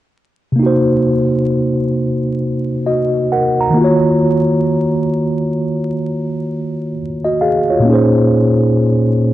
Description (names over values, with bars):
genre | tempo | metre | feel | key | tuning
hip hop | 66 BPM | 4/4 | swing 63% on 16ths | unclear | A4 = 440 Hz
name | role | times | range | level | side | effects
mellow tine electric piano | accompaniment | 0.5-9.3 s | Bb2 to Bb5 | -13 LUFS | equal | medium stereo tremolo, cassette tape
room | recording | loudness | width
moderate plate reverb, RT60 2.9 s | dark, warm production, vinyl crackle, nothing above 10.4 kHz | -13 LUFS | side -14 dB against mid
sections
0.6-9.3 A section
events
none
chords
0.6 Cm7b5; 3.8 Ebm9; 7.9 Bbm11